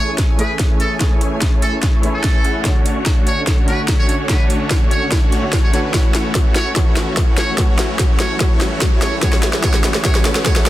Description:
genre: future bass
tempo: 146 BPM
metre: 4/4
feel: half-time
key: unclear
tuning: A4 = 440 Hz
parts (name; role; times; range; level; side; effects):
- trumpet with metal mute; melody; 0.0-10.6 s; A4 to C#5; -25 LUFS; right 1 dB; sidechain pumping, tape echo
- felt-muted upright piano; accompaniment; 0.0-10.7 s; D3 to C#5; -26 LUFS; equal; sidechain pumping
- clear symphonic string section; sustained chords; 0.0-10.7 s; D3 to G#5; -31 LUFS; left 1 dB; none
- supersaw chords; riff; 0.0-10.7 s; A3 to F#5; -23 LUFS; equal; sidechain pumping, low-pass filter
- riser; sound effects; 5.4-10.7 s; none; -32 LUFS; right 1 dB; none
- electronic kick drum; drums; 0.2-10.5 s; none; -16 LUFS; equal; none
- trap drum kit; drums; 0.2-10.7 s; hi-hat, snare drum; -20 LUFS; equal; soft clipping on snare
room: light reverb, studio ambience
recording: dense, heavily limited modern master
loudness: -14 LUFS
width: side -15 dB against mid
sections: 0.0-10.7 A section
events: build-up 0.0-10.7; drum fill 0.0-10.7; filter sweep on supersaw synth 0.0-10.7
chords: 0.0 Amaj7; 2.7 Dmaj7; 5.9 F#m7; 9.2 Bm7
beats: 0.19 0.60 | 1.01 1.42 1.83 2.24 | 2.65 3.06 3.47 3.88 | 4.29 4.71 5.12 5.53 | 5.94 6.35 6.76 7.17 | 7.58 7.99 8.40 8.82 | 9.23 9.64 10.05 10.46

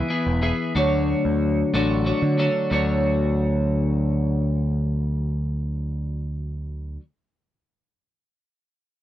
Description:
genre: rock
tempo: 61 BPM (dotted quarters)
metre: 6/8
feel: straight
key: D major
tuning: A4 = 441 Hz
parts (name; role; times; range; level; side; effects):
- twelve-string electric guitar; riff; 0.0-7.0 s; D3 to C#5; -23 LUFS; left 1 dB; lush chorus
- growling picked electric bass; bass; 0.3-7.0 s; E1 to D3; -24 LUFS; right 1 dB; overdrive
room: little or no reverb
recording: dry, close 1970s-style studio recording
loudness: -20 LUFS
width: side -13 dB against mid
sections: 0.0-2.7 A section; 2.7-6.7 B section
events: none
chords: 0.0 E; 0.7 Dmaj7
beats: | 0.74 1.73 | 2.72 3.71 | 4.70 5.68

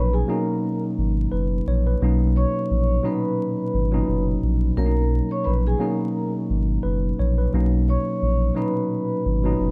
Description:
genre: hip hop, boom-bap hip-hop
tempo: 87 BPM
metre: 4/4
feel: swing 55% on 16ths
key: B major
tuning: A4 = 440 Hz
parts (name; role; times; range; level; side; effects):
- vibraphone with soft mallets; melody; 0.0-9.7 s; G#4 to C#6; -30 LUFS; equal; high-pass filter, low-pass filter, digital delay
- tine electric piano; accompaniment; 0.0-9.7 s; A#2 to C#5; -26 LUFS; equal; cassette tape, high-pass filter, low-pass filter
- saturated sub bass; bass; 0.0-9.7 s; F#1 to B1; -23 LUFS; equal; none
room: light reverb, studio reverb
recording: dark, warm production, vinyl crackle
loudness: -22 LUFS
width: mono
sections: 0.0-9.7 A section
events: none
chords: 0.0 Bmaj7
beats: 0.64 1.33 | 2.02 2.71 3.40 4.09 | 4.78 5.46 6.16 6.84 | 7.53 8.22 8.91 9.60

